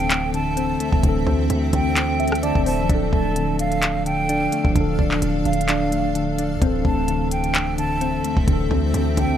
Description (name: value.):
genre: hip hop, trap.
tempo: 129 BPM.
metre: 4/4.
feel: half-time.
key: D minor.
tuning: A4 = 440 Hz.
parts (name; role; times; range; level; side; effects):
breathy hollow jazz flute; second line; 0.0-9.4 s; F5 to A5; -26 LUFS; right 4 dB; digital delay.
mellow tine electric piano; accompaniment; 0.0-9.4 s; D2 to E5; -26 LUFS; right 1 dB; medium stereo tremolo, low-pass filter.
granular cloud pad; sustained chords; 0.0-9.4 s; C4 to F5; -29 LUFS; equal; built-in reverb.
soft electric-piano-like synth keys; arpeggios; 0.0-9.4 s; D3 to D4; -25 LUFS; left 4 dB; chorus, low-pass filter, digital delay.
hard-hitting 808-style bass; bass; 0.0-9.4 s; C1 to D2; -25 LUFS; equal; none.
trap drum kit; drums; 0.0-9.3 s; handclaps, hi-hat, kick drum, rim click; -22 LUFS; equal; none.
room: little or no reverb.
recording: none.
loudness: -18 LUFS.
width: side -10 dB against mid.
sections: 0.0-9.4 A section.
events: none.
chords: 0.0 Am/D; 2.9 Dm; 6.6 Am/D.